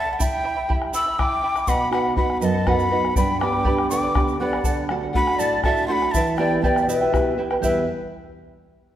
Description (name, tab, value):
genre	andean folk, Andean ensemble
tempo	81 BPM (dotted quarters)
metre	6/8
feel	straight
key	E minor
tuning	A4 = 438 Hz
part	breathy large quena	melody	0.0-7.9 s	E5 to E6	-24 LUFS	equal	none
part	breathy reedy pan flute	second line	0.0-7.9 s	B4 to B5	-26 LUFS	left 3 dB	none
part	charango	accompaniment	0.0-7.8 s	E4 to B5	-27 LUFS	right 3 dB	none
part	bombo	percussion	0.2-7.9 s	none	-26 LUFS	left 1 dB	none
part	egg shaker	percussion	0.2-7.9 s	none	-36 LUFS	right 7 dB	none
part	nylon-string guitar	accompaniment	1.7-7.9 s	E2 to B4	-24 LUFS	right 3 dB	none
room	wet scoring stage reverb, RT60 1.7 s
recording	dark, warm production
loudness	-18 LUFS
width	side -11 dB against mid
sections	0.0-7.6 A section; 7.6-9.0 B section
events	none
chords	0.2 Em; 1.7 B; 3.2 G; 4.7 D; 6.1 Em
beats	| 0.19 0.93 | 1.68 2.42 | 3.17 3.91 | 4.66 5.40 | 6.15 6.89 | 7.64